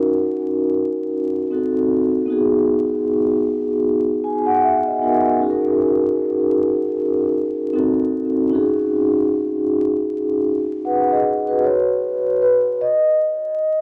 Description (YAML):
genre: hip hop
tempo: 77 BPM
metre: 4/4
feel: swing 59% on 16ths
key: unclear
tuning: A4 = 441 Hz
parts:
  - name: vibraphone with soft mallets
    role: solo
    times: 0.0-13.8 s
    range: B3 to G#5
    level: -19 LUFS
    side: equal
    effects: low-pass filter, tape echo
room: light reverb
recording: home recording on cassette, vinyl crackle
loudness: -19 LUFS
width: mono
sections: 0.0-11.6 A section; 11.6-13.8 B section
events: vibraphone solo 11.6-13.8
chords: 0.0 F#6/C#; 1.5 Cdim7; 2.3 B6; 5.4 F#6/C#; 7.7 Cdim7; 8.5 C#9sus4; 11.6 N.C.